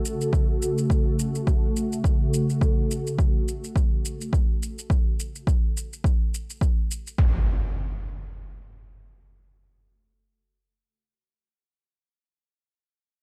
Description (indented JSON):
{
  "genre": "organic downtempo",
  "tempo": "105 BPM",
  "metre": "4/4",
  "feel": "swing 56% on 16ths",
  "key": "F# minor pentatonic",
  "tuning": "A4 = 441 Hz",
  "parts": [
    { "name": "ethereal airy pad", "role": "sustained chords", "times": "0.0-2.6 s", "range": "C#3 to A4", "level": "-30 LUFS", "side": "equal", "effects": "ensemble chorus, built-in reverb, phaser, sidechain pumping" },
    { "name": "shaker", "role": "drums", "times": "0.1-7.2 s", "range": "none", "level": "-38 LUFS", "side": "equal", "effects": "overdrive" },
    { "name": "electronic kick drum", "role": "drums", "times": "0.3-7.3 s", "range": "none", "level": "-25 LUFS", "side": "equal", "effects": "overdrive" },
    { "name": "impact", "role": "sound effects", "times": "7.2-10.8 s", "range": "none", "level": "-29 LUFS", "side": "equal", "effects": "none" }
  ],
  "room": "digital ambience",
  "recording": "dry, gritty hardware recording",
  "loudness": "-24 LUFS",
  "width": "mono",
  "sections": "0.0-7.2 A section; 7.2-9.5 B section",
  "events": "none",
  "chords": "0.0 F#m; 7.2 N.C."
}